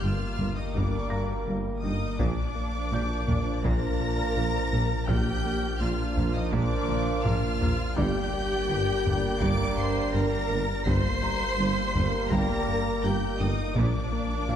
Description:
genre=cinematic, hybrid orchestral and electronic film score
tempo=83 BPM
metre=4/4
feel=straight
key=G minor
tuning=A4 = 437 Hz
part: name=warm symphonic violin section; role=melody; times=0.0-14.6 s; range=D6 to D7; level=-36 LUFS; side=left 1 dB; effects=none
part: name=bright symphonic violin section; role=second line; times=0.0-14.6 s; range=D5 to D6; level=-37 LUFS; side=left 2 dB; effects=none
part: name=clear symphonic viola section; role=accompaniment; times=0.0-14.6 s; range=D4 to D5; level=-34 LUFS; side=left 1 dB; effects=none
part: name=hollow soft pad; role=sustained chords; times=0.0-14.6 s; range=F3 to D5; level=-37 LUFS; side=right 1 dB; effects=ensemble chorus
part: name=mellow French horn section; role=sustained chords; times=0.0-14.6 s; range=Bb3 to Bb4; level=-36 LUFS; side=equal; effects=none
part: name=warm trombone section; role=sustained chords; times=0.0-14.6 s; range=F3 to Bb3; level=-37 LUFS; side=right 3 dB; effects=none
part: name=smooth synth bass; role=riff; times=0.0-14.6 s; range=G2 to Bb3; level=-33 LUFS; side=left 2 dB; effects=none
part: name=dark tuba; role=bass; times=0.0-14.6 s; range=G1 to Bb1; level=-35 LUFS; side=right 3 dB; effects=none
part: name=pure sine sub bass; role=bass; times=0.0-14.6 s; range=G1 to Bb1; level=-34 LUFS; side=left 1 dB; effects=none
part: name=rich studio cello section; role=bass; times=0.0-14.6 s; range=G2 to Bb2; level=-35 LUFS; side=right 2 dB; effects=none
part: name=rich studio double bass section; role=bass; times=0.0-14.6 s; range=G1 to Bb1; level=-35 LUFS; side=right 3 dB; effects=none
part: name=felt-muted upright piano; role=texture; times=0.0-14.6 s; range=D5 to Bb6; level=-43 LUFS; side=left 2 dB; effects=ping-pong delay
part: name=taiko ensemble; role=drums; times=0.4-14.4 s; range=none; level=-33 LUFS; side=left 1 dB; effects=none
room=moderate scoring stage reverb, RT60 1.9 s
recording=dark, warm production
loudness=-24 LUFS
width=side -9 dB against mid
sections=0.0-14.6 A section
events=drum fill 6.9-8.0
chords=0.0 Gm; 2.2 Bb; 8.0 Gm; 13.8 Bb

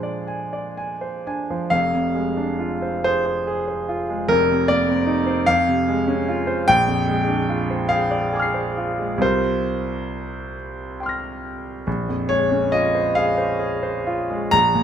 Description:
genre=classical, impressionist solo piano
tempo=40-52 BPM (dotted quarters)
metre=6/8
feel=rubato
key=unclear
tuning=A4 = 438 Hz
part: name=clear concert grand piano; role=solo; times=0.0-14.8 s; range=F1 to C7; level=-19 LUFS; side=equal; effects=none
room=moderate recital hall reverb, RT60 1.7 s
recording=close, detailed microphones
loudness=-19 LUFS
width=side -8 dB against mid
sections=0.0-1.7 A section; 1.7-14.8 B section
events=none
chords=0.0 Bb9; 1.7 Fm6; 4.3 Cm9/F; 5.5 Dbmaj7/F; 6.7 Bb9; 9.2 C7sus4; 11.9 Bbm9

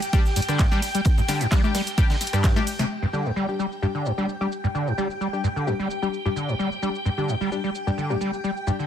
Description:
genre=acid house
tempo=130 BPM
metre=4/4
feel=swing 53% on 16ths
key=unclear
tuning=A4 = 440 Hz
part: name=string machine, full ensemble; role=sustained chords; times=0.0-8.9 s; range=G5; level=-32 LUFS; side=left 1 dB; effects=phaser, ensemble chorus, sidechain pumping
part: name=punchy analog drum machine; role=drums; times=0.0-8.9 s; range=congas, handclaps, hi-hat, ride cymbal, rim click, shaker, snare drum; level=-30 LUFS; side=left 2 dB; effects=low-pass filter on snare, low-pass filter on hats, low-pass filter on cymbals, low-pass filter on perc
part: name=overdriven acid bass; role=riff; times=0.1-8.9 s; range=G2 to G3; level=-25 LUFS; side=equal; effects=distortion, tube saturation, analog chorus, cassette tape, digital delay
part: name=band-passed chord stab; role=stabs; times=0.1-8.8 s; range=G3 to G4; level=-30 LUFS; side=left 5 dB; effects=chorus, digital delay
part: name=crunchy breakbeat drum kit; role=drums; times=0.1-2.8 s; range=ride cymbal, snare drum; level=-40 LUFS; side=equal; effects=none
part: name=electronic kick drum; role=drums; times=0.1-2.5 s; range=none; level=-20 LUFS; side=equal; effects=overdrive
room=light reverb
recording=dense, heavily limited modern master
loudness=-22 LUFS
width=side -9 dB against mid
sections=0.0-2.9 A section; 2.9-8.9 B section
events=drop 0.0-2.9; drum fill 2.4-2.9; band accent 2.8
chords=0.0 G5

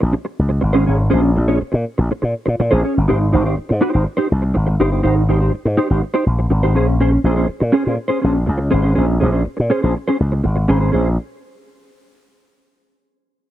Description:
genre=disco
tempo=122 BPM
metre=4/4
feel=straight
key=Bb dorian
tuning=A4 = 439 Hz
part: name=mellow electric guitar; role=accompaniment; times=0.0-11.1 s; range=Db4 to Db5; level=-18 LUFS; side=right 1 dB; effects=ensemble chorus
part: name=slap bass with an envelope filter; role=bass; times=0.0-11.2 s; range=G1 to Bb2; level=-16 LUFS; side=equal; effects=none
room=digital ambience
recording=dry, close 1970s-style studio recording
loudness=-14 LUFS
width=side -13 dB against mid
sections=0.0-3.1 A section; 3.1-10.9 B section; 10.9-12.9 C section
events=none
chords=0.0 Bbm9; 3.1 Abmaj7; 6.8 Bbm9

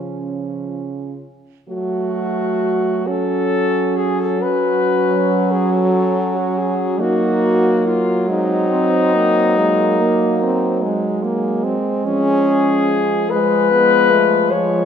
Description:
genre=classical, lyrical piece for horn quartet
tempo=39-51 BPM (dotted quarters)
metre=12/8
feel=rubato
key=unclear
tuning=A4 = 440 Hz
part: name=mellow French horn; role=melody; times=0.0-14.8 s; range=D#4 to C#5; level=-18 LUFS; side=left 6 dB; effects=none
part: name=mellow French horn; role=second line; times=0.0-14.8 s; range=G#3 to D#4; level=-22 LUFS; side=right 9 dB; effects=none
part: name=dark French horn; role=accompaniment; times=0.0-14.8 s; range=E#3 to C#4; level=-20 LUFS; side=left 1 dB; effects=none
part: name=dark French horn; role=bass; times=0.0-14.8 s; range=C#3 to F#3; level=-22 LUFS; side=right 2 dB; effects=none
room=moderate recital hall reverb, RT60 1.6 s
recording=none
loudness=-14 LUFS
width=side -8 dB against mid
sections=0.0-1.7 A section; 1.7-14.8 B section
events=none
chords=0.0 C#; 1.7 F#m; 7.0 G#7/F#; 12.1 C#/E#

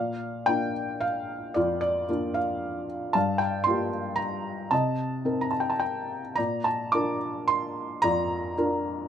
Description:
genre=classical, lyrical solo piano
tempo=103-117 BPM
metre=3/4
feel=rubato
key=Bb major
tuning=A4 = 440 Hz
part: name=felt-muted upright piano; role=solo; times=0.0-9.1 s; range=F2 to D6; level=-25 LUFS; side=equal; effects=none
room=little or no reverb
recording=close, detailed microphones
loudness=-25 LUFS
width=side -9 dB against mid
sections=0.0-9.1 A section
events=none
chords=0.0 Bb; 3.2 Gm7; 4.7 Cm7; 6.4 Bb

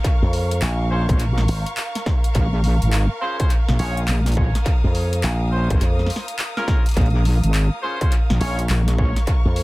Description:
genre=glitch hop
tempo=104 BPM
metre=4/4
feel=swing 63% on 16ths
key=Bb minor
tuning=A4 = 441 Hz
part: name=dubstep drum kit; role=drums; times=0.0-9.6 s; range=handclaps, hi-hat, snare drum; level=-29 LUFS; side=equal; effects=tape echo
part: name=electronic kick drum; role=drums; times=0.0-9.4 s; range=none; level=-19 LUFS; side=equal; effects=distortion
part: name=dark studio string section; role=texture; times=0.0-9.6 s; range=Bb4 to Eb6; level=-31 LUFS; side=equal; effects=sidechain pumping
part: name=slap bass with an envelope filter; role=bass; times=0.2-9.6 s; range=Ab1 to F2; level=-20 LUFS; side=equal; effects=none
part: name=bright horn section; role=stabs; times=0.9-8.6 s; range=Db4 to Db5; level=-30 LUFS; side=equal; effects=vintage 12-bit sampler grit, sidechain pumping, tape echo
part: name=wobble bass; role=bass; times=1.1-9.1 s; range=Ab1 to Bb1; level=-18 LUFS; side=equal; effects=chorus, overdrive
room=little or no reverb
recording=echo-heavy mix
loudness=-17 LUFS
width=side -20 dB against mid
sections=0.0-9.6 A section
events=none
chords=0.0 Bbm7

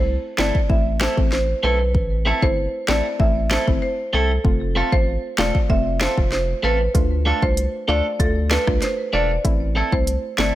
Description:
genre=dancehall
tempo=96 BPM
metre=4/4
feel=straight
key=A minor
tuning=A4 = 441 Hz
part: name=marimba with medium hard mallets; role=melody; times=0.0-10.5 s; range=A4 to E5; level=-24 LUFS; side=right 1 dB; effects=digital delay
part: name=soft round pluck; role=accompaniment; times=0.0-10.6 s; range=A3 to F4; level=-28 LUFS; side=left 2 dB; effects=chorus
part: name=saturated sub bass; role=bass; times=0.0-10.5 s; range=E1 to D2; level=-22 LUFS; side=equal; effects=none
part: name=clean electric guitar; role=arpeggios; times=0.4-10.6 s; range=A3 to A4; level=-25 LUFS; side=right 2 dB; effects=none
part: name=afro-pop drum kit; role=drums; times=0.4-10.5 s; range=hi-hat, kick drum, rim click, snare drum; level=-21 LUFS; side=equal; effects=none
room=digital ambience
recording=none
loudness=-17 LUFS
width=side -14 dB against mid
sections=0.0-10.6 A section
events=none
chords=0.0 Am; 4.4 F; 6.9 Dm; 9.4 Am

